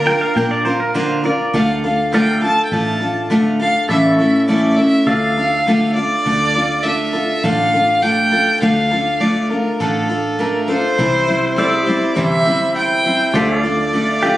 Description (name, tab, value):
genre	country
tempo	102 BPM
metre	4/4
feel	straight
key	D minor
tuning	A4 = 440 Hz
part	dark fiddle	melody	0.0-14.4 s	A4 to A5	-18 LUFS	equal	none
part	picked steel-string acoustic guitar	accompaniment	0.0-14.4 s	A2 to C5	-17 LUFS	equal	none
part	pedal steel guitar	sustained chords	0.0-6.3, 11.6-14.4 s	G4 to F5	-23 LUFS	equal	none
part	fingered electric bass	bass	0.0-14.4 s	G1 to Bb2	-25 LUFS	equal	none
part	pedal steel guitar	second line	0.1-1.5, 14.2-14.4 s	G4 to G5	-20 LUFS	right 2 dB	none
room	light reverb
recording	recorded on a phone in the room, club reverb, compression, nothing above 10.7 kHz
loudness	-13 LUFS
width	side -15 dB against mid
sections	0.0-6.3 A section; 6.3-14.4 B section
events	none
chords	0.0 Bb/D; 1.5 Dm; 3.9 A; 5.1 Dm; 11.0 C; 13.3 Dm